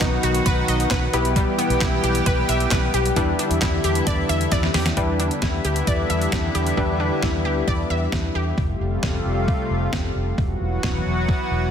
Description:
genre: synth-pop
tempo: 133 BPM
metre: 4/4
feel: straight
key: E minor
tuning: A4 = 438 Hz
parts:
  - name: warm analog keys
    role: accompaniment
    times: 0.0-8.5 s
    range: B3 to B4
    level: -27 LUFS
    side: left 3 dB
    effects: chorus
  - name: lush unison pad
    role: sustained chords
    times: 0.0-11.7 s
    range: C3 to G4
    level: -25 LUFS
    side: equal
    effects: chorus
  - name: wide unison pluck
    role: arpeggios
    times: 0.0-8.5 s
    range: G3 to E5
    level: -26 LUFS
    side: right 1 dB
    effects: ping-pong delay
  - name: vintage muted fingered electric bass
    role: bass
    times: 0.0-11.7 s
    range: E1 to E2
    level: -24 LUFS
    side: equal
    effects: none
  - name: detuned 8-bit digital drum machine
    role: drums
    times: 0.0-11.4 s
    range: handclaps, hi-hat, kick drum, snare drum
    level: -24 LUFS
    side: equal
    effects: overdrive
room: light reverb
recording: dense, heavily limited modern master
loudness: -19 LUFS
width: side -8 dB against mid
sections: 0.0-5.0 A section; 5.0-8.6 B section; 8.6-11.7 C section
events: drum fill 4.5-5.0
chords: 0.0 B; 1.1 Em/B; 3.2 Em7; 8.6 Fadd9; 10.4 Esus2

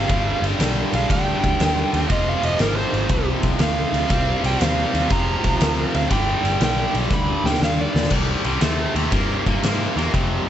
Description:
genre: blues rock power trio and southern rock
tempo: 120 BPM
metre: 4/4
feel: swing 67% on 8ths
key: C minor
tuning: A4 = 436 Hz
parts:
  - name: overdriven slide guitar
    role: melody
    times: 0.0-8.1 s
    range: Bb4 to B5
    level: -24 LUFS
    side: right 2 dB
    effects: none
  - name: tight distorted guitar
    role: riff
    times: 0.0-10.4 s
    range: F2 to C4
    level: -23 LUFS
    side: left 1 dB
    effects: distortion
  - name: vintage muted picked electric bass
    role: bass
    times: 0.0-10.5 s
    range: F1 to Ab2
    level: -24 LUFS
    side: equal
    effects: none
  - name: oversized low-tuned drum kit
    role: drums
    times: 0.1-10.3 s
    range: crash cymbal, kick drum, ride cymbal, snare drum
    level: -22 LUFS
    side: equal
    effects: none
room: light reverb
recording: nothing above 8.0 kHz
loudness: -18 LUFS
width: side -10 dB against mid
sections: 0.0-8.1 A section; 8.1-10.5 B section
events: electric slide guitar solo 0.0-8.1; drum fill 7.1-8.1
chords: 0.1 G; 2.1 Fm; 4.1 Cm; 5.1 F5; 6.1 G; 8.1 Cm7

